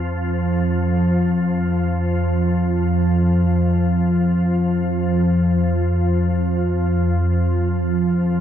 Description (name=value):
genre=dark ambient drone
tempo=free time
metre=none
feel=none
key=unclear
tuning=A4 = 441 Hz
part: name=organ-like drone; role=drone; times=0.0-8.4 s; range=F2 to F3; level=-16 LUFS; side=equal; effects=ensemble chorus, built-in reverb
part: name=wind-like tuned noise texture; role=texture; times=0.0-2.4 s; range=C5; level=-39 LUFS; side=left 2 dB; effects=none
room=wet cathedral reverb, RT60 5.4 s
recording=worn, warbling old tape, cassette tape, warbly pitch drift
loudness=-16 LUFS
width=side -10 dB against mid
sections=0.0-2.4 A section; 2.4-8.4 B section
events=none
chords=0.0 F5; 2.4 N.C.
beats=free time